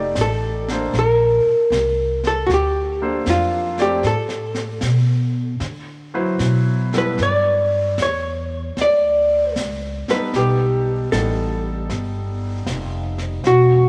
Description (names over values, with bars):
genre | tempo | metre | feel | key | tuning
jazz ballad | 77 BPM | 4/4 | swing 67% on 8ths | unclear | A4 = 440 Hz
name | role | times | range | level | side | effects
warm concert grand piano | accompaniment | 0.0-13.5 s | F#3 to D5 | -28 LUFS | equal | none
upright bass | bass | 0.0-13.9 s | E1 to D3 | -24 LUFS | equal | none
vintage hollow-body jazz guitar | melody | 0.2-13.9 s | F4 to D5 | -20 LUFS | equal | cassette tape
jazz brush drum kit | drums | 0.2-13.9 s | brushed snare drum, hi-hat, snare drum | -34 LUFS | equal | cassette tape
room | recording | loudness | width
moderate lush hall reverb, RT60 2.7 s | home recording on cassette | -19 LUFS | mono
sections
0.0-13.9 A section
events
none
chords
0.0 F13; 0.9 Bbmaj9; 4.0 Asus2; 5.6 D13; 7.2 G5; 10.3 Baug7